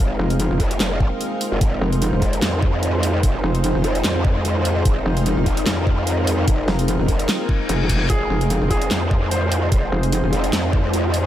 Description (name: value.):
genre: heavy wobble dubstep.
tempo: 148 BPM.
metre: 4/4.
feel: swing 55% on 16ths, half-time.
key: F minor.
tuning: A4 = 440 Hz.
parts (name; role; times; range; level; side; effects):
supersaw pad; sustained chords; 0.0-11.3 s; Ab3 to F5; -26 LUFS; equal; sidechain pumping, low-pass filter.
growl bass; bass; 0.0-11.3 s; F1 to F2; -21 LUFS; equal; chorus, overdrive.
granular cloud pad; texture; 0.0-11.3 s; Eb4 to C5; -27 LUFS; equal; built-in reverb, lush chorus, sidechain pumping.
metallic wobble bass; bass; 0.2-10.3 s; F1; -19 LUFS; equal; chorus, overdrive.
dubstep drum kit; drums; 0.3-11.2 s; handclaps, hi-hat, snare drum; -26 LUFS; equal; studio reverb.
electronic kick drum; drums; 0.6-10.8 s; none; -19 LUFS; equal; studio reverb.
reverse cymbal; sound effects; 7.4-8.1 s; none; -31 LUFS; left 4 dB; none.
felt-muted upright piano; melody; 8.1-11.3 s; Ab4 to C5; -28 LUFS; equal; analog delay.
room: light reverb.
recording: none.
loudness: -17 LUFS.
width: side -12 dB against mid.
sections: 0.0-11.3 A section.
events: reverse cymbal 7.4-8.1.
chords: 0.0 Fm.